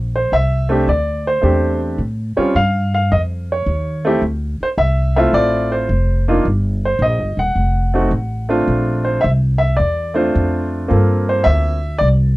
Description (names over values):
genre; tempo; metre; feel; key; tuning
jazz piano trio; 108 BPM; 4/4; swing 69% on 8ths; unclear; A4 = 440 Hz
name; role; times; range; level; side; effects
upright bass; bass; 0.0-12.4 s; Eb1 to A2; -17 LUFS; equal; none
warm grand piano; melody; 0.2-12.1 s; G3 to Gb5; -17 LUFS; equal; none
room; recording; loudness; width
little or no reverb; dry, close 1970s-style studio recording; -14 LUFS; side -19 dB against mid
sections
0.0-12.4 A section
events
none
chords
0.0 Bbmaj13; 2.0 A7b13; 4.2 Dm7; 6.5 Eb; 7.6 F(b9); 8.7 Bbmaj9; 10.9 Gm11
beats
0.32 0.88 1.44 | 2.00 2.55 3.11 3.67 | 4.23 4.78 5.34 5.90 | 6.46 7.01 7.57 8.12 | 8.68 9.23 9.79 10.35 | 10.90 11.46 12.01